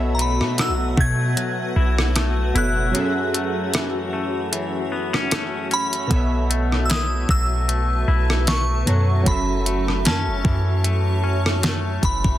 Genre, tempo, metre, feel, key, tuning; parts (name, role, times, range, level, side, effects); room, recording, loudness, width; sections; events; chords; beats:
contemporary R&B; 76 BPM; 4/4; swing 54% on 16ths; A4 = 440 Hz
warm analog keys; accompaniment; 0.0-12.4 s; B2 to F#5; -27 LUFS; right 2 dB; chorus
granular cloud pad; sustained chords; 0.0-12.4 s; F#4 to A5; -30 LUFS; left 1 dB; built-in reverb
twangy electric guitar; arpeggios; 0.0-12.4 s; F#2 to E4; -28 LUFS; left 5 dB; digital delay
clean 808-style bass; bass; 0.0-12.4 s; F#1 to B2; -21 LUFS; equal
glassy synth bell; melody; 0.1-12.4 s; A5 to G#6; -26 LUFS; equal; chorus, digital delay
detuned 8-bit digital drum machine; drums; 0.2-12.4 s; hi-hat, kick drum, rim click, snare drum; -22 LUFS; equal; overdrive
light reverb, digital ambience; dense, heavily limited modern master; -18 LUFS; side -13 dB against mid
0.0-6.1 A section; 6.1-12.4 B section
break 2.9-6.1
0.0 B7sus4; 2.9 F#m7; 6.1 B7sus4; 9.3 F#m7
0.58 1.37 2.16 | 2.95 3.74 4.53 5.32 | 6.11 6.90 7.69 8.48 | 9.27 10.05 10.84 11.63